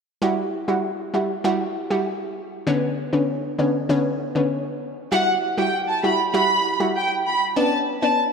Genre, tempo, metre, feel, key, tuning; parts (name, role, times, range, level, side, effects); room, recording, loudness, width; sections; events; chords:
dancehall; 98 BPM; 4/4; straight; E dorian; A4 = 438 Hz
analog pluck; accompaniment; 0.2-8.2 s; D3 to F#4; -22 LUFS; equal; chorus
warm studio violin section; melody; 5.1-8.1 s; F#5 to B5; -20 LUFS; right 1 dB
wet plate reverb, RT60 3.2 s; dreamy mix soaked in reverb; -20 LUFS; side -5 dB against mid
0.2-5.1 A section; 5.1-8.3 B section
0.2 Emadd9; 2.7 Bmadd9; 5.1 Emadd9; 7.6 Bmadd9